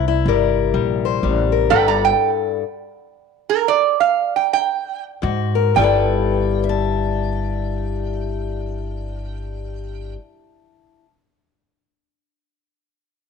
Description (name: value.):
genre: acoustic country blues, solo or duo.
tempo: 110-124 BPM.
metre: 4/4.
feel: swing 60% on 8ths.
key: unclear.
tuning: A4 = 441 Hz.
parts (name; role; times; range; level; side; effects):
fingerpicked acoustic archtop guitar; accompaniment; 0.0-11.1 s; G2 to A5; -20 LUFS; left 11 dB; none.
upright bass; bass; 0.0-2.1, 5.2-10.1 s; G1 to Ab2; -22 LUFS; equal; none.
metal-body resonator slide guitar; melody; 1.7-10.1 s; Bb4 to Bb5; -17 LUFS; right 13 dB; none.
room: light reverb, small room ambience.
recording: 1960s-style stereo with parts hard left and right.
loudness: -16 LUFS.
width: side -5 dB against mid.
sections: 0.0-5.8 A section; 5.8-10.1 B section.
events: slowing down 1.7-5.8.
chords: 0.0 C7; 1.7 Gsus2; 5.2 Absus2; 5.8 G69.